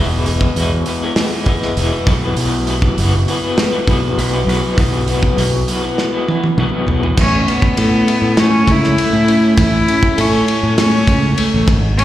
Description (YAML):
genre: quiet-loud alternative rock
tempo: 100 BPM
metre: 4/4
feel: straight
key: unclear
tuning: A4 = 442 Hz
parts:
  - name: electric guitar through a small old amp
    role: arpeggios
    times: 0.0-12.0 s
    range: E2 to B4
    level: -18 LUFS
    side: left 1 dB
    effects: tremolo, slapback echo
  - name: growling fingered electric bass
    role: bass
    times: 0.0-12.0 s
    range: E1 to A2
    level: -16 LUFS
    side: equal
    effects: overdrive
  - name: loose indie drum kit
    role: drums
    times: 0.3-12.0 s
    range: crash cymbal, hi-hat, kick drum, ride cymbal, snare drum, toms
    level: -18 LUFS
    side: equal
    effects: none
  - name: warm cello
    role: melody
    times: 7.2-12.0 s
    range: B3 to E4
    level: -16 LUFS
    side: left 1 dB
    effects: slapback echo
room: little or no reverb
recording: live gig heard through the venue's PA, recital hall reverb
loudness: -12 LUFS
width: side -13 dB against mid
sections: 0.0-7.2 A section; 7.2-12.0 B section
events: drum fill 6.0-7.2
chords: 0.0 E; 2.1 Bsus4; 7.2 A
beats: 0.57 1.17 1.77 | 2.37 2.98 3.58 4.18 | 4.78 5.38 5.98 6.58 | 7.18 7.78 8.38 8.98 | 9.58 10.18 10.78 11.38 | 11.97